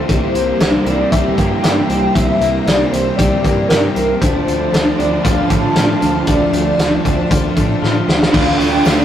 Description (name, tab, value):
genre	rock, shoegaze and dream pop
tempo	116 BPM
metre	4/4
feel	straight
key	D minor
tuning	A4 = 441 Hz
part	pure sine lead	melody	0.0-9.0 s	A4 to A5	-20 LUFS	equal	chorus, tremolo
part	string machine, violins	sustained chords	0.0-9.0 s	F4 to Bb5	-29 LUFS	equal	none
part	direct-recorded clean electric guitar	arpeggios	0.0-9.0 s	E3 to G4	-25 LUFS	left 3 dB	none
part	overdriven electric guitar	riff	0.0-9.0 s	C3 to F4	-19 LUFS	right 5 dB	none
part	overdriven semi-hollow guitar	riff	0.0-9.0 s	C3 to F4	-21 LUFS	left 4 dB	none
part	picked electric bass	bass	0.1-9.0 s	C2 to A2	-24 LUFS	left 1 dB	none
part	loose indie drum kit	drums	0.1-9.0 s	crash cymbal, hi-hat, kick drum, snare drum	-16 LUFS	equal	none
part	raw garage guitar	riff	8.3-9.0 s	D3 to D4	-21 LUFS	equal	overdrive
part	tambourine	percussion	8.8-9.0 s	none	-34 LUFS	right 6 dB	none
room	moderate stone room reverb, RT60 1.2 s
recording	rough rehearsal-room recording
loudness	-12 LUFS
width	side -10 dB against mid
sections	0.0-8.3 A section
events	drum fill 7.8-8.3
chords	0.1 C7; 4.2 Dm7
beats	| 0.09 0.60 1.11 1.63 | 2.15 2.66 3.17 3.69 | 4.21 4.72 5.24 5.75 | 6.27 6.79 7.30 7.82 | 8.33 8.85